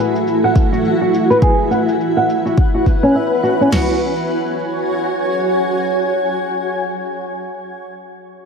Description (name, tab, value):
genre	organic downtempo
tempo	104 BPM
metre	4/4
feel	swing 60% on 16ths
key	F# minor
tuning	A4 = 440 Hz
part	granular cloud pad	sustained chords	0.0-6.8 s	A3 to G#5	-17 LUFS	equal	built-in reverb, sidechain pumping
part	flamenco guitar	arpeggios	0.0-4.0 s	C#4 to F#5	-17 LUFS	equal	low-pass filter, ping-pong delay
part	cabasa	drums	0.2-3.7 s	none	-44 LUFS	equal	low-pass filter on perc, low-pass filter on room
part	deep house drum kit	drums	0.6-3.9 s	crash cymbal, kick drum, snare drum, toms	-15 LUFS	equal	overdrive
room	moderate lush hall reverb, RT60 1.6 s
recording	none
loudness	-14 LUFS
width	side -5 dB against mid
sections	0.0-3.7 A section; 3.7-6.0 B section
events	filter sweep on nylon-string guitar 0.0-3.7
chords	0.0 A5; 1.4 E5; 3.7 F#5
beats	0.26 0.84 | 1.42 1.99 2.57 3.15 | 3.73 4.30 4.88 5.46